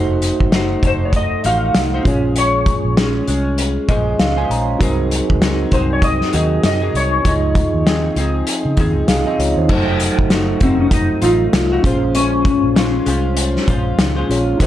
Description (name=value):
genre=indie pop, bedroom pop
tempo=98 BPM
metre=4/4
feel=swing 60% on 16ths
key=unclear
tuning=A4 = 443 Hz
part: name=direct-recorded clean electric guitar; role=accompaniment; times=0.0-14.7 s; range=Bb2 to C5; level=-22 LUFS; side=left 2 dB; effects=analog chorus, warbly pitch drift
part: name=mellow tine electric piano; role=accompaniment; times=0.0-14.7 s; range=Gb3 to Bb5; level=-22 LUFS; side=right 3 dB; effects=medium stereo tremolo
part: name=vintage muted fingered electric bass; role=bass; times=0.0-14.7 s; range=F1 to Db3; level=-20 LUFS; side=equal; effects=transformer saturation
part: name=loose indie drum kit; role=drums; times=0.2-14.7 s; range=crash cymbal, hi-hat, kick drum, snare drum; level=-18 LUFS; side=equal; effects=none
part: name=clean lap steel guitar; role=melody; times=0.8-13.3 s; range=C4 to F5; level=-19 LUFS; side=left 2 dB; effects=ensemble chorus, analog delay
room=light reverb, small room ambience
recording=none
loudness=-14 LUFS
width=side -12 dB against mid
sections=0.0-9.7 A section; 9.7-14.7 A section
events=tine electric piano fill 3.6-4.8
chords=0.0 F7b9; 2.1 Bbm9; 4.8 Ab7/C; 7.3 Dbmaj9; 9.7 F7b9; 11.8 Bbm9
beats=0.53 1.14 1.75 | 2.36 2.97 3.58 4.20 | 4.81 5.42 6.03 6.64 | 7.25 7.87 8.48 9.09 | 9.70 10.31 10.93 11.54 | 12.15 12.76 13.37 13.99 | 14.60